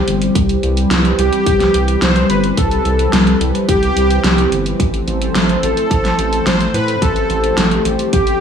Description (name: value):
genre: synthwave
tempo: 108 BPM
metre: 4/4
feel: straight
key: C major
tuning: A4 = 440 Hz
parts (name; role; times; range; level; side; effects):
- soft supersaw; melody; 0.0-8.4 s; G4 to C5; -18 LUFS; equal; cassette tape, digital delay
- warm analog pad; sustained chords; 0.0-8.4 s; E3 to C5; -18 LUFS; left 1 dB; chorus, sidechain pumping
- round analog bass; bass; 0.1-8.4 s; G1 to A2; -18 LUFS; equal; sidechain pumping
- pop drum kit; drums; 0.1-8.4 s; hi-hat, snare drum; -18 LUFS; right 1 dB; small room ambience, gated reverb
- electronic kick drum; drums; 0.4-8.2 s; none; -18 LUFS; equal; small room ambience
room: moderate plate reverb, RT60 1.7 s, digital ambience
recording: none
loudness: -12 LUFS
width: side -7 dB against mid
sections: 0.0-8.4 A section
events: none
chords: 0.0 C; 4.8 Am